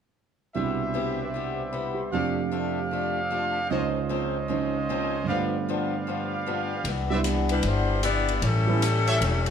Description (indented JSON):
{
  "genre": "jazz, big band swing",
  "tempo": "152 BPM",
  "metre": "4/4",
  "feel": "swing 64% on 8ths",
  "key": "C major",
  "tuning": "A4 = 444 Hz",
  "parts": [
    { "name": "picked acoustic archtop guitar", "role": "accompaniment", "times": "0.5-9.5 s", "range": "G2 to G4", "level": "-32 LUFS", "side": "left 5 dB", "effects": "none" },
    { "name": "warm grand piano", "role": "accompaniment", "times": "0.5-8.8 s", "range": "C2 to C5", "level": "-29 LUFS", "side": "right 6 dB", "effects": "none" },
    { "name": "bright trumpet section", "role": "stabs", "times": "0.5-9.2 s", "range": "F4 to E6", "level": "-30 LUFS", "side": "right 1 dB", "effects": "none" },
    { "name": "upright bass", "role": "bass", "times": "6.8-9.5 s", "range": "E1 to C2", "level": "-25 LUFS", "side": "left 1 dB", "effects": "none" },
    { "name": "swinging big-band drum kit", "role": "drums", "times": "6.8-9.5 s", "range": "hi-hat, ride cymbal", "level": "-33 LUFS", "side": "left 4 dB", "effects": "none" },
    { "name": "bright saxophone section", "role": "melody", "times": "7.5-9.5 s", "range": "G3 to D5", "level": "-26 LUFS", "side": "left 3 dB", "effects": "none" }
  ],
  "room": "moderate large studio reverb, RT60 1.4 s",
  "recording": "none",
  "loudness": "-24 LUFS",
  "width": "side -8 dB against mid",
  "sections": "0.5-6.8 A section; 6.8-9.5 B section",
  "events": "none",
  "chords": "0.5 Cmaj7; 2.1 F69; 3.7 Dbmaj9; 5.3 G7; 6.8 Cmaj9; 8.4 A7"
}